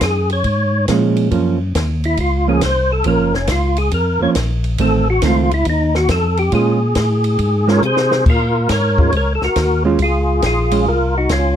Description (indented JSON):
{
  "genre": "soul jazz organ trio",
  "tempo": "138 BPM",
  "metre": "4/4",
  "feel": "swing 67% on 8ths",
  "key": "Bb minor",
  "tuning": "A4 = 438 Hz",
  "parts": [
    { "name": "percussive tonewheel organ", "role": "melody", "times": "0.0-11.6 s", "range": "Db4 to Db5", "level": "-17 LUFS", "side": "left 1 dB", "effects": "slow rotary speaker, chorus vibrato" },
    { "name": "tonewheel organ", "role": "bass", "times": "0.0-11.6 s", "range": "F1 to C3", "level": "-18 LUFS", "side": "left 1 dB", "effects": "slow rotary speaker" },
    { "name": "compact cocktail drum kit", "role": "drums", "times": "0.0-11.4 s", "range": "crash cymbal, hi-hat, kick drum, ride cymbal, snare drum", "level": "-21 LUFS", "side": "left 1 dB", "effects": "none" },
    { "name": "hollow-body jazz guitar", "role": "accompaniment", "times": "0.9-10.9 s", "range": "Eb3 to F4", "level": "-17 LUFS", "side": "right 5 dB", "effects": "none" }
  ],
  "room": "moderate small room reverb, RT60 0.5 s",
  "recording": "dark, warm production",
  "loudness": "-13 LUFS",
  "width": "side -9 dB against mid",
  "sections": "0.0-8.3 A section; 8.3-11.6 B section",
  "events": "tonewheel organ solo 0.0-8.3; drum fill 7.8-8.3",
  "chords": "0.0 Bbm7; 1.3 Gbmaj7; 4.8 F7; 6.5 Bbm7",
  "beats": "0.01 0.45 0.88 | 1.32 1.75 2.19 2.62 | 3.06 3.49 3.92 4.36 | 4.79 5.22 5.66 6.09 | 6.52 6.96 7.39 7.82 | 8.26 8.69 9.12 9.56 | 9.99 10.43 10.87 11.30"
}